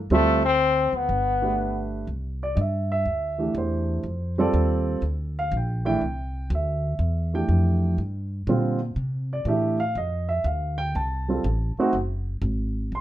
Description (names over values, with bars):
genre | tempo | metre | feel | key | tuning
jazz | 122 BPM | 4/4 | swing 67% on 8ths | unclear | A4 = 441 Hz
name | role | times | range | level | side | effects
upright bass | bass | 0.0-13.0 s | F#1 to C3 | -26 LUFS | equal | none
brilliant trombone | melody | 0.1-1.9 s | A3 to C4 | -21 LUFS | left 3 dB | none
dark baby grand piano | accompaniment | 0.1-13.0 s | D3 to C6 | -25 LUFS | right 2 dB | none
room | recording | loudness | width
light reverb | minimal, uncompressed stereo recording | -22 LUFS | side -13 dB against mid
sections
0.0-2.1 A section; 2.1-13.0 B section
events
none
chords
0.1 Dm7; 1.1 Gadd9; 2.1 C69; 4.0 F13; 6.0 C69; 8.0 Gm7; 9.0 C69; 10.0 F13; 11.9 N.C.